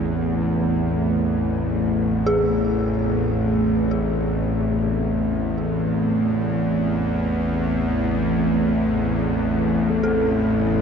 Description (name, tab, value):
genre	dark ambient drone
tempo	free time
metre	none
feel	none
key	A harmonic minor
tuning	A4 = 440 Hz
part	dark analog pad	sustained chords	0.0-10.8 s	A3 to E4	-23 LUFS	right 1 dB	chorus
part	dark detuned synth bell	arpeggios	0.0-10.8 s	C4 to A4	-26 LUFS	equal	chorus, phaser, ping-pong delay
part	bowed-like drone	drone	0.0-10.8 s	A1 to E2	-22 LUFS	left 1 dB	built-in reverb
part	bronze singing bowl	texture	0.0-10.8 s	A3 to B4	-32 LUFS	left 1 dB	none
room	wet huge ambient reverb, RT60 7.5 s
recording	in a vast, echoing space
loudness	-19 LUFS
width	side -6 dB against mid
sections	0.0-10.8 A section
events	none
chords	0.0 Amadd9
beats	free time